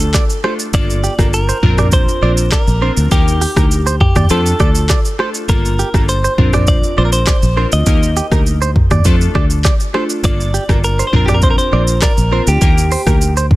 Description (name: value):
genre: afrobeats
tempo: 101 BPM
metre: 4/4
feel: straight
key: unclear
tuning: A4 = 440 Hz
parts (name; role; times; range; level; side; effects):
- direct-recorded clean electric guitar; melody; 0.0-13.3 s; G4 to Eb5; -20 LUFS; equal; none
- glassy digital keys; accompaniment; 0.0-13.3 s; A3 to Bb4; -22 LUFS; left 2 dB; chorus
- fingered electric bass; bass; 0.0-13.5 s; G1 to F2; -15 LUFS; equal; none
- afro-pop drum kit; drums; 0.0-13.6 s; handclaps, hi-hat, kick drum, rim click, shaker, toms; -14 LUFS; equal; overdrive
- direct-recorded clean electric guitar; riff; 0.1-13.5 s; G4 to D5; -22 LUFS; right 6 dB; none
room: little or no reverb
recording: dense, heavily limited modern master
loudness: -11 LUFS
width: side -17 dB against mid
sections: 0.0-13.6 A section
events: none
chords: 0.0 Dm; 0.7 Gm7; 1.6 Bbadd9; 3.1 Eb; 4.3 Dm; 5.5 Gm7; 6.4 Bbadd9; 7.9 Eb; 9.1 Dm; 10.2 Gm7; 11.1 Bbadd9; 12.6 Eb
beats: 0.14 | 0.74 1.33 1.92 2.52 | 3.11 3.71 4.30 4.89 | 5.49 6.08 6.68 7.27 | 7.87 8.46 9.05 9.65 | 10.24 10.84 11.43 12.02 | 12.62 13.21